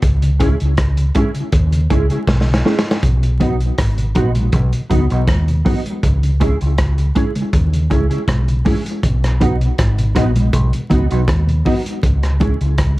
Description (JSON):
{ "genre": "roots reggae", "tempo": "80 BPM", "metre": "4/4", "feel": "straight", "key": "B major", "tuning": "A4 = 443 Hz", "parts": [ { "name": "fingered electric bass", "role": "bass", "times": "0.0-13.0 s", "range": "G#1 to D#2", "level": "-16 LUFS", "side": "equal", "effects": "none" }, { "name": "crunchy breakbeat drum kit", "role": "drums", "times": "0.0-13.0 s", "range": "hi-hat, kick drum, rim click, snare drum", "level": "-18 LUFS", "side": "equal", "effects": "none" }, { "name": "mellow tonewheel organ", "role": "accompaniment", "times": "0.2-13.0 s", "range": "B2 to E4", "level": "-24 LUFS", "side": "left 2 dB", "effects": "chorus vibrato, tape echo" }, { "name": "mellow electric guitar", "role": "accompaniment", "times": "0.4-12.5 s", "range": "F#3 to G#4", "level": "-21 LUFS", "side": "right 2 dB", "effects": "ensemble chorus, tape echo" }, { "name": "congas", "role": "percussion", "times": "3.0-13.0 s", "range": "none", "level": "-26 LUFS", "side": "right 1 dB", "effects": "none" } ], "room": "light reverb", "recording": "dark, warm production, vinyl crackle", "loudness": "-13 LUFS", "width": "side -18 dB against mid", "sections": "0.0-13.0 A section", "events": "drum fill 2.3-3.0", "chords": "0.0 C#m; 3.0 B; 6.0 C#m; 9.0 B; 12.0 C#m" }